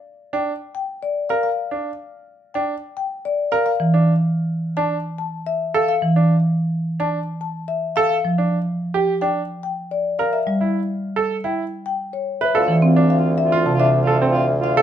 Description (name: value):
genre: classical, minimalist pattern music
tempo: 108 BPM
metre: 4/4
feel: straight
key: G dorian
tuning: A4 = 439 Hz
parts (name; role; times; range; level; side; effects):
- marimba with medium mallets; melody; 0.3-14.8 s; C#5 to A5; -24 LUFS; left 8 dB; none
- bright concert grand piano; arpeggios; 0.3-14.8 s; C4 to B4; -21 LUFS; right 5 dB; none
- marimba with medium hard mallets; accompaniment; 3.8-13.8 s; C3 to C4; -20 LUFS; right 1 dB; none
- mellow soprano saxophone; second line; 12.5-14.8 s; F4; -26 LUFS; right 3 dB; none
- mellow bassoon; bass; 12.5-14.8 s; D2; -22 LUFS; right 1 dB; none
room: moderate large studio reverb, RT60 0.8 s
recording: none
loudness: -18 LUFS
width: side -10 dB against mid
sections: 0.0-12.5 A section; 12.5-14.8 B section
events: none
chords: 0.0 Gm (rootless); 3.7 Fmaj7 (rootless); 8.1 Gm7; 10.3 A7(no3); 12.5 Dm7